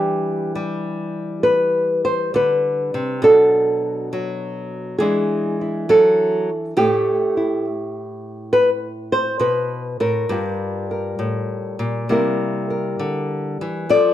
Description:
solo jazz; 68 BPM; 4/4; swing 68% on 8ths, rubato; E minor; A4 = 441 Hz
nylon-string guitar; solo; 0.0-14.1 s; G2 to D5; -17 LUFS; equal
moderate large studio reverb, RT60 1.1 s; -17 LUFS; side -12 dB against mid
0.0-14.1 A section
0.0 Em7; 3.2 Bm7; 5.0 E7; 6.8 A5; 10.3 Gm7; 12.1 C7

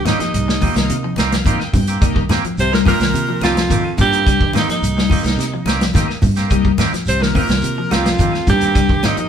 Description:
afrobeat; 107 BPM; 4/4; straight; C minor; A4 = 440 Hz
bright alto saxophone; melody; 0.0-9.3 s; Eb4 to C5; -20 LUFS; right 2 dB
warm baritone saxophone; second line; 0.0-9.3 s; Eb2 to C3; -25 LUFS; right 4 dB
fingered electric bass; bass; 0.0-9.2 s; Bb1 to C3; -21 LUFS; right 1 dB
electric guitar at the edge of break-up; arpeggios; 0.1-9.3 s; Eb3 to G3; -23 LUFS; left 7 dB; phaser
twangy electric guitar; stabs; 0.1-9.2 s; Eb3 to G4; -25 LUFS; right 4 dB
warm soul drum kit; drums; 0.1-9.3 s; hi-hat, kick drum, snare drum; -18 LUFS; equal
claves; percussion; 0.1-9.2 s; -36 LUFS; left 3 dB
congas; percussion; 0.1-9.2 s; -23 LUFS; left 1 dB
shekere; percussion; 0.1-9.3 s; -25 LUFS; equal
combo organ; accompaniment; 0.2-9.3 s; Bb3 to G5; -28 LUFS; left 2 dB
moderate studio reverb, RT60 0.9 s; band playing live in one room; -14 LUFS; side -8 dB against mid
0.0-9.3 A section
transistor combo organ fill 0.9-2.0
0.0 Cm7

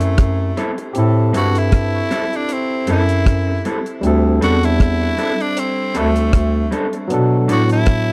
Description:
lovers rock reggae; 78 BPM; 4/4; swing 56% on 16ths; A dorian; A4 = 440 Hz
growling tenor saxophone; melody; 0.0-8.1 s; A3 to F#4; -25 LUFS; equal; tape echo
barky tine electric piano; accompaniment; 0.0-8.1 s; F#3 to A4; -24 LUFS; equal; overdrive, tape echo
mellow bass clarinet; bass; 0.0-8.1 s; D2 to B2; -19 LUFS; equal
deep reggae drum kit; drums; 0.0-8.1 s; hi-hat, kick drum, rim click; -18 LUFS; equal
electric guitar through a small old amp; stabs; 0.6-7.6 s; G3 to A4; -27 LUFS; equal; spring reverb
small room reverb; dry, close 1970s-style studio recording; -17 LUFS; mono
0.0-8.1 A section
0.0 Am7; 4.0 D7sus4; 7.1 Bm7

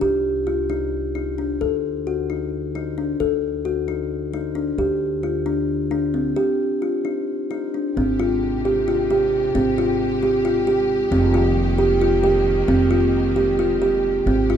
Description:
contemporary instrumental, chamber music in an uneven meter; 265 BPM (eighths); 7/8; straight; A4 = 440 Hz
kalimba; arpeggios; 0.0-14.6 s; C4 to A4; -19 LUFS; equal
upright bass; bass; 0.0-14.6 s; F1 to D2; -26 LUFS; right 1 dB
clear studio string section; sustained chords; 8.0-14.6 s; C3 to G4; -28 LUFS; left 3 dB
light reverb; dark, warm production; -18 LUFS; side -8 dB against mid
0.0-8.0 A section; 8.0-14.6 B section
0.0 Cm; 1.6 D5; 4.8 G5/D; 6.4 Dmadd11; 8.0 Abmaj7; 11.1 Fm11

